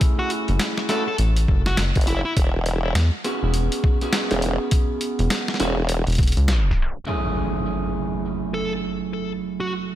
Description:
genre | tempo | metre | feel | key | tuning
glitch hop | 102 BPM | 4/4 | swing 62% on 16ths | F# minor | A4 = 440 Hz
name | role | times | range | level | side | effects
electric guitar through a small old amp | stabs | 0.0-10.0 s | F#2 to G#4 | -26 LUFS | right 2 dB | sidechain pumping, ping-pong delay
boom bap sampler-style drum kit | drums | 0.0-6.9 s | hi-hat, snare drum | -26 LUFS | equal | low-pass filter on snare, studio reverb, low-pass filter on hats
electronic kick drum | drums | 0.0-6.8 s | none | -20 LUFS | equal | studio reverb
dark smooth lead guitar | melody | 0.2-2.3, 8.5-9.7 s | E4 to A4 | -28 LUFS | left 1 dB | overdrive, ping-pong delay
rubbery square bass | bass | 0.5-6.9 s | E1 to E2 | -19 LUFS | equal | tube saturation
formant-sweep wobble bass | bass | 2.0-6.0 s | E1 to F#1 | -22 LUFS | equal | chorus, overdrive
impact | sound effects | 7.1-9.4 s | none | -30 LUFS | equal | none
room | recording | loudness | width
light reverb, digital ambience | tape stop | -20 LUFS | side -12 dB against mid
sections
0.0-7.1 A section; 7.1-10.0 B section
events
tape stop 6.5-7.1; impact 7.1-9.4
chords
0.0 F#m9; 2.4 E6; 7.1 F#m9

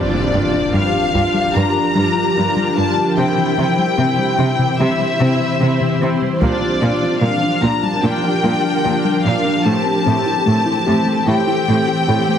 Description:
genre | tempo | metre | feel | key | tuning
cinematic, hybrid orchestral and electronic film score | 74 BPM | 4/4 | straight | G dorian | A4 = 440 Hz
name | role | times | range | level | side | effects
warm symphonic violin section | melody | 0.0-12.4 s | D5 to Bb5 | -20 LUFS | left 4 dB | none
rich symphonic viola section | accompaniment | 0.0-12.4 s | C4 to G4 | -23 LUFS | equal | none
ethereal airy pad | sustained chords | 0.0-12.4 s | E3 to C5 | -20 LUFS | equal | ensemble chorus, built-in reverb, tremolo
soft round pluck | arpeggios | 0.0-12.4 s | C3 to G4 | -23 LUFS | left 3 dB | chorus, tape echo
impact | sound effects | 0.0-3.2 s | none | -25 LUFS | equal | none
rich symphonic cello section | bass | 0.3-12.2 s | G2 to C3 | -20 LUFS | right 2 dB | none
taiko ensemble | drums | 1.1-1.5, 6.4-8.0 s | none | -27 LUFS | equal | none
room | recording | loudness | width
wet scoring stage reverb, RT60 1.5 s | heavily compressed radio sound, multiband compression | -14 LUFS | side -8 dB against mid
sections
0.0-12.4 A section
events
impact 0.0-3.2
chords
0.0 Gm7; 3.2 C; 6.4 Gm7; 9.7 Am7

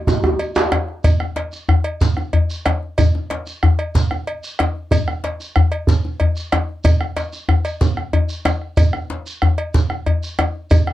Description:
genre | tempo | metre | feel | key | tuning
west african traditional, West African drum ensemble | 124 BPM (dotted quarters) | 12/8 | straight | none | none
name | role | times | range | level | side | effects
bombo | percussion | 0.1-10.9 s | none | -18 LUFS | right 2 dB | none
djembe | percussion | 0.1-10.9 s | none | -18 LUFS | left 2 dB | none
djembe | percussion | 0.1-0.7 s | none | -18 LUFS | right 1 dB | none
shekere | percussion | 0.1-10.9 s | none | -26 LUFS | right 2 dB | none
cowbell | percussion | 0.4-10.9 s | none | -25 LUFS | equal | none
room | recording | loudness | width
moderate booth ambience, RT60 0.3 s | dark, warm production | -16 LUFS | side -14 dB against mid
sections
0.0-1.0 A section; 1.0-10.9 B section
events
drum fill 0.0-1.0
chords
none

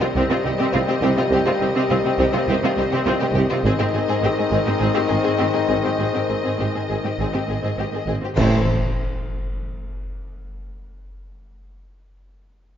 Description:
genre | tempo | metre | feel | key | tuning
cinematic, epic orchestral film score | 103 BPM | 4/4 | straight | unclear | A4 = 440 Hz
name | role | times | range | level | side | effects
clear symphonic violin section | melody | 0.0-8.7 s | C5 to Eb5 | -29 LUFS | left 5 dB | none
rich symphonic violin section | second line | 0.0-8.7 s | E4 to G#4 | -28 LUFS | left 2 dB | none
warm symphonic viola section | accompaniment | 0.0-8.7 s | C4 | -26 LUFS | right 1 dB | none
mellow French horn section | sustained chords | 0.0-8.6 s | C4 to G4 | -25 LUFS | left 5 dB | none
warm trombone section | sustained chords | 0.0-8.6 s | Eb3 to A3 | -29 LUFS | right 1 dB | none
rich symphonic cello section | bass | 0.0-8.7 s | G#2 to C3 | -26 LUFS | right 2 dB | none
dark tuba | bass | 0.2-8.6 s | G#1 to C2 | -27 LUFS | right 3 dB | none
rich symphonic double bass section | bass | 0.2-8.7 s | G#1 to C2 | -27 LUFS | right 2 dB | none
clash cymbals and concert bass drum | percussion | 8.4-9.5 s | none | -29 LUFS | equal | none
timpani | percussion | 8.4-8.6 s | A2 | -28 LUFS | equal | none
impact | sound effects | 8.6-10.7 s | none | -34 LUFS | equal | none
room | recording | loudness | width
moderate scoring stage reverb, RT60 1.6 s | nothing above 7.5 kHz | -18 LUFS | side -9 dB against mid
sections
0.0-8.4 A section; 8.4-10.7 B section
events
band accent 8.4-9.0; impact 8.4-10.7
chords
0.0 Cm; 3.7 G#; 8.4 Am

